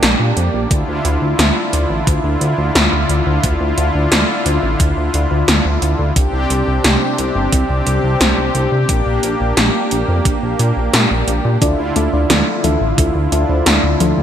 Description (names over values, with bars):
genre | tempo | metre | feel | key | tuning
synthwave | 88 BPM | 4/4 | straight | D minor | A4 = 440 Hz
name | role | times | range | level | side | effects
brassy analog pad | sustained chords | 0.0-14.2 s | C3 to G4 | -18 LUFS | equal | chorus, sidechain pumping
chorused synth bass | bass | 0.0-14.2 s | G1 to Bb2 | -17 LUFS | equal | tube saturation
80s electronic pad drums | drums | 0.0-14.1 s | hi-hat, snare drum | -17 LUFS | equal | overdrive
electronic kick drum | drums | 0.7-13.1 s | none | -17 LUFS | equal | overdrive
warbly dusty pluck | arpeggios | 11.6-14.2 s | D3 to D4 | -23 LUFS | left 1 dB | chorus, ping-pong delay
mellow FM electric piano | stabs | 11.6-14.2 s | D4 to E5 | -19 LUFS | left 1 dB | chorus, phaser, ping-pong delay
room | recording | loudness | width
moderate plate reverb, RT60 2.7 s | bright 1980s-style digital production | -13 LUFS | side -9 dB against mid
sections
0.0-14.2 A section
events
none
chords
0.0 Gm/Bb; 0.7 Dmadd9; 6.2 Csus2; 8.9 Gm/Bb; 11.6 Dmadd9